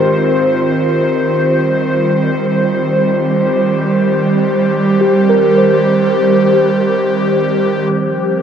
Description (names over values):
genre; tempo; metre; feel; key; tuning
ambient; free time; none; none; unclear; A4 = 440 Hz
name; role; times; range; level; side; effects
airy breathy pad; sustained chords; 0.0-8.4 s; Ab2 to C5; -12 LUFS; equal; chorus
muted felt-like synth keys; arpeggios; 0.0-7.9 s; F4 to C5; -17 LUFS; right 1 dB; chorus, dub echo
room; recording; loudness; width
wet spring reverb, RT60 2.5 s; echo-heavy mix; -11 LUFS; side -8 dB against mid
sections
0.0-7.9 A section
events
none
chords
0.3 Cm; 7.9 Ebadd9 (rootless)